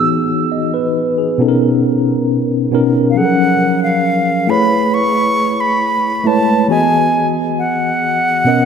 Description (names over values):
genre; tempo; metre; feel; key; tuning
R&B; 68 BPM; 4/4; straight; unclear; A4 = 441 Hz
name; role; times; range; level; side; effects
reedy concert flute; melody; 0.0-8.7 s; E#5 to C#6; -15 LUFS; equal; diffuse ambient delay
mellow tine electric piano; accompaniment; 0.0-8.7 s; B2 to D#5; -14 LUFS; equal; medium stereo tremolo
room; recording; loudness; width
wet lush hall reverb, RT60 2.6 s; dreamy mix soaked in reverb; -12 LUFS; side -7 dB against mid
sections
0.0-8.7 A section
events
none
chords
0.0 Emaj9; 1.4 Bmaj9; 3.2 F#maj9; 4.5 Amaj9; 6.7 Emaj9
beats
0.52 1.40 2.28 | 3.17 4.05 4.93 5.81 | 6.70 7.58 8.46